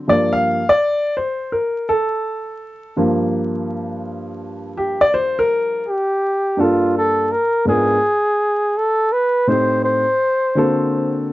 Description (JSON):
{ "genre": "hip hop", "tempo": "83 BPM", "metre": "4/4", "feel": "swing 66% on 16ths", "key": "G minor", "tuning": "A4 = 440 Hz", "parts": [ { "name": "dark upright piano", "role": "accompaniment", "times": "0.0-11.3 s", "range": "G2 to F5", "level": "-17 LUFS", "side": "equal", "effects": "none" }, { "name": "breathy flugelhorn", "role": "melody", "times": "5.9-11.2 s", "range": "F4 to C5", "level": "-16 LUFS", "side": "equal", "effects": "none" } ], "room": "light reverb", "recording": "vinyl crackle, nothing above 7.7 kHz", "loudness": "-16 LUFS", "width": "side -16 dB against mid", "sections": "0.0-5.9 A section; 5.9-11.3 B section", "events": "upright piano solo 0.0-5.9", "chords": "0.1 Gm7; 7.3 G#dim7; 8.8 Am7b5; 10.2 D7b13" }